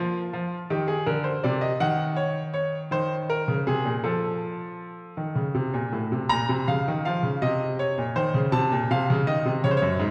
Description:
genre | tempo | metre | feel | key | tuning
classical, baroque-style two-part invention for grand piano | 54 BPM (dotted quarters) | 6/8 | straight | Bb minor | A4 = 441 Hz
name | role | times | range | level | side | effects
bright baby grand piano | solo | 0.0-10.1 s | Gb2 to Bb5 | -26 LUFS | equal | none
room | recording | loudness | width
wet concert hall reverb, RT60 1.8 s | heard from further back in the room | -26 LUFS | mono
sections
0.0-6.3 A section; 6.3-10.1 B section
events
none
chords
0.0 N.C.; 0.7 Eb; 1.8 Eb5; 4.0 F; 6.3 Bbm; 7.4 Bbmadd9; 8.5 Adim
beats
0.70 | 1.80 2.91 | 4.04 5.17 | 6.30 7.42 | 8.53 9.63

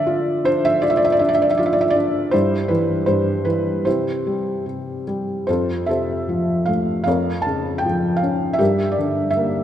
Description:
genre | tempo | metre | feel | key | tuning
classical, lyrical solo piano | 73-82 BPM | 4/4 | rubato | C major, F major from 5.5 s | A4 = 441 Hz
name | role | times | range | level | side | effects
felt-muted upright piano | solo | 0.0-9.6 s | F2 to A5 | -17 LUFS | equal | none
room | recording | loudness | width
wet concert hall reverb, RT60 2.5 s | none | -17 LUFS | side -10 dB against mid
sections
0.0-5.5 A section; 5.5-9.6 B section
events
none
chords
0.0 Dm; 2.3 G6; 3.9 C; 5.5 F; 7.1 Bbm/F; 8.6 Gm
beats
0.09 0.83 1.59 | 2.33 3.08 3.86 4.67 | 5.48 6.28 7.07 7.84 | 8.60 9.37

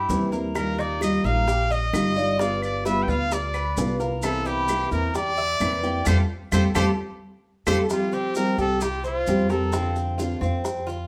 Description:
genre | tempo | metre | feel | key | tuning
latin, Cuban son and guajira | 131 BPM | 4/4 | straight | F major | A4 = 437 Hz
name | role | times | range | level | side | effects
brilliant trumpet | melody | 0.0-10.0 s | F4 to G5 | -30 LUFS | equal | none
Cuban tres | arpeggios | 0.0-11.1 s | C4 to E5 | -31 LUFS | equal | none
upright bass | bass | 0.0-11.1 s | G1 to F2 | -30 LUFS | equal | none
nylon-string guitar | accompaniment | 0.1-10.7 s | C3 to G4 | -28 LUFS | equal | none
bongos | percussion | 0.1-11.1 s | none | -36 LUFS | equal | none
maracas | percussion | 0.1-11.1 s | none | -42 LUFS | equal | none
claves | percussion | 0.6-7.8 s | none | -38 LUFS | equal | none
room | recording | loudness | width
wet large studio reverb, RT60 0.9 s | band playing live in one room | -24 LUFS | mono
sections
0.0-7.9 A section; 7.9-11.1 A section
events
band accent 6.1-7.9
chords
0.0 C; 0.6 Ebadd9; 2.4 G7; 4.2 C7; 6.1 Fadd9; 7.9 Fsus2; 9.7 F5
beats
0.10 | 0.56 1.01 1.48 1.94 | 2.40 2.85 3.31 3.77 | 4.23 4.69 5.15 5.61 | 6.07 6.53 6.99 7.44 | 7.90 8.36 8.82 9.28 | 9.73 10.19 10.65

